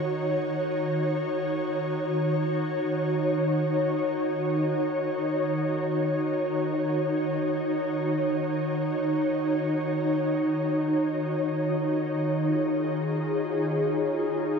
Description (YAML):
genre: ambient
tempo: free time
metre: none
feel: none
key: Eb minor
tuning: A4 = 435 Hz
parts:
  - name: ethereal airy pad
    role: solo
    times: 0.0-14.6 s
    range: Eb3 to Db5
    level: -24 LUFS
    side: equal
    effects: ensemble chorus, built-in reverb, ping-pong delay
room: wet huge ambient reverb, RT60 7.8 s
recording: cassette tape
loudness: -24 LUFS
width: side -5 dB against mid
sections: 0.0-10.4 A section; 10.4-14.6 B section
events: none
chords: 0.0 Ebm7; 10.4 Ebm11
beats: free time